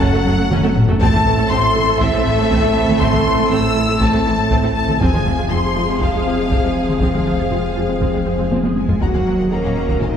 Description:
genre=cinematic, hybrid orchestral and electronic film score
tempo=120 BPM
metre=4/4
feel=straight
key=unclear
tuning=A4 = 440 Hz
part: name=rich symphonic violin section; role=melody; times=0.0-10.2 s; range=Eb5 to E6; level=-24 LUFS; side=left 5 dB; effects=none
part: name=warm symphonic violin section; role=second line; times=0.0-10.1 s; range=Eb5 to E6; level=-24 LUFS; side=left 2 dB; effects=none
part: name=rich studio viola section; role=accompaniment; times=0.0-10.2 s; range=E3 to A4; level=-24 LUFS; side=right 2 dB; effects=none
part: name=clear trombone section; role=sustained chords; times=0.0-10.2 s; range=A2 to Bb3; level=-24 LUFS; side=right 4 dB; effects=none
part: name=dark French horn section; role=sustained chords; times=0.0-10.2 s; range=Ab3 to Bb4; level=-24 LUFS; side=equal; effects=none
part: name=glassy FM pad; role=sustained chords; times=0.0-10.2 s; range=F3 to Eb5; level=-25 LUFS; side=left 2 dB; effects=ensemble chorus, built-in reverb
part: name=tight sequenced synth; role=arpeggios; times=0.0-10.2 s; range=Eb3 to A4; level=-28 LUFS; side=left 2 dB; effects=none
part: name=rich symphonic double bass section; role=bass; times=0.0-10.2 s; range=F1 to Eb2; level=-25 LUFS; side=right 2 dB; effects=none
part: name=sub bass with octave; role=bass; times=0.0-10.2 s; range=Eb1 to A1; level=-27 LUFS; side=equal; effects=none
part: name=warm studio cello section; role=bass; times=0.0-10.2 s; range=F2 to Bb3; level=-24 LUFS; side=right 1 dB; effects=none
part: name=taiko ensemble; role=drums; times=0.0-10.2 s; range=none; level=-21 LUFS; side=equal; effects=none
room=wet scoring stage reverb, RT60 1.9 s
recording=heard from further back in the room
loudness=-14 LUFS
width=side -8 dB against mid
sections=0.0-9.0 A section; 9.0-10.2 B section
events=drum fill 0.5-1.0, 8.5-9.0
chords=0.0 Gbm; 1.0 Am; 5.0 Fm; 9.0 Ebm

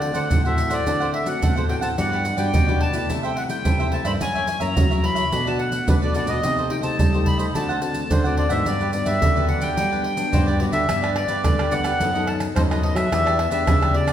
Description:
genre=samba and choro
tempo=108 BPM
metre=4/4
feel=straight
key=G major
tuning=A4 = 440 Hz
part: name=accordion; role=melody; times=0.0-14.1 s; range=B4 to B5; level=-24 LUFS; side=left 1 dB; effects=none
part: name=cavaquinho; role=accompaniment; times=0.0-14.1 s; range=D4 to F#5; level=-29 LUFS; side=right 3 dB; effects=none
part: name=nylon-string guitar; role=accompaniment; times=0.0-14.1 s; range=F#2 to A4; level=-29 LUFS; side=left 4 dB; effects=none
part: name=nylon-string guitar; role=bass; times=0.0-14.1 s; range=E2 to G3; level=-26 LUFS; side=equal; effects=none
part: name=pandeiro, maracas, surdo and tamborim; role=percussion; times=0.0-14.1 s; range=none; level=-22 LUFS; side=right 1 dB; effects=none
room=wet recital hall reverb, RT60 1.4 s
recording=recorded in a church or concert hall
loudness=-18 LUFS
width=side -10 dB against mid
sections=0.0-10.9 A section; 10.9-14.1 A section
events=none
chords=0.0 D7; 2.0 Gmaj7; 3.1 C6; 4.2 F#7; 5.3 Bm7; 6.4 Cm6; 7.5 D7; 8.7 Gmaj7; 10.9 G; 12.0 B7/F#; 13.1 Em7

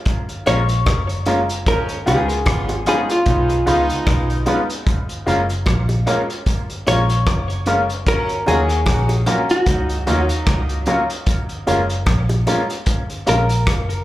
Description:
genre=lovers rock reggae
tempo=75 BPM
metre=4/4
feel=swing 57% on 16ths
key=F# major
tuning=A4 = 440 Hz
part: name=vintage drum kit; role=drums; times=0.1-14.0 s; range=hi-hat, kick drum, rim click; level=-22 LUFS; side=equal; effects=dub echo
part: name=hollow-body jazz guitar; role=melody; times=0.5-14.0 s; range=E#4 to C#5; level=-21 LUFS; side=equal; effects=tape echo, slapback echo
part: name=clear concert grand piano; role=accompaniment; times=0.5-13.4 s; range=F#3 to E#4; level=-23 LUFS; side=left 1 dB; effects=slapback echo
part: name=electric guitar with an envelope filter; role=stabs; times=0.5-13.4 s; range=C#4 to B4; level=-26 LUFS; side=right 2 dB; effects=wide subtle chorus, dub echo, slapback echo
part: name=vintage muted fingered electric bass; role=bass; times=0.5-14.0 s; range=F#1 to D#2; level=-20 LUFS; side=equal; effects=none
part: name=bongos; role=percussion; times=0.5-13.9 s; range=none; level=-32 LUFS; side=right 2 dB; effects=none
part: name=clear horn section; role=second line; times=1.7-10.8 s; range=E#3 to F#4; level=-28 LUFS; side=right 1 dB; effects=dub echo, slapback echo
room=light reverb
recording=live gig heard through the venue's PA, club ambience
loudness=-16 LUFS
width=side -15 dB against mid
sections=0.0-14.0 A section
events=none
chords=0.0 F#maj7; 1.7 C#7; 4.9 F#maj7; 8.1 D#m7; 11.3 F#maj7

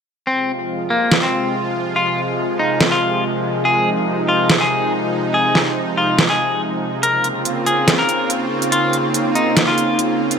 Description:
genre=heavy wobble dubstep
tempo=142 BPM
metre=4/4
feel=half-time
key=F minor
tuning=A4 = 440 Hz
part: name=clean electric guitar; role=melody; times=0.3-10.0 s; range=Bb3 to Bb4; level=-19 LUFS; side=left 1 dB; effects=ping-pong delay
part: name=supersaw pad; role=sustained chords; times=0.3-10.4 s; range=C3 to F4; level=-20 LUFS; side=right 1 dB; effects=none
part: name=warbly tape-like pad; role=texture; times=0.3-10.4 s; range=Bb3 to Db6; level=-25 LUFS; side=equal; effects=chorus, built-in reverb
part: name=dubstep drum kit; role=drums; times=1.1-10.4 s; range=hi-hat, snare drum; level=-16 LUFS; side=right 1 dB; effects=none
room=moderate digital room reverb, RT60 1.2 s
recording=none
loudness=-15 LUFS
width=side -6 dB against mid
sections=0.3-10.4 A section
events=fade-in on ambient pad 0.3-10.4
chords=0.3 Fm; 7.0 Bbmadd9

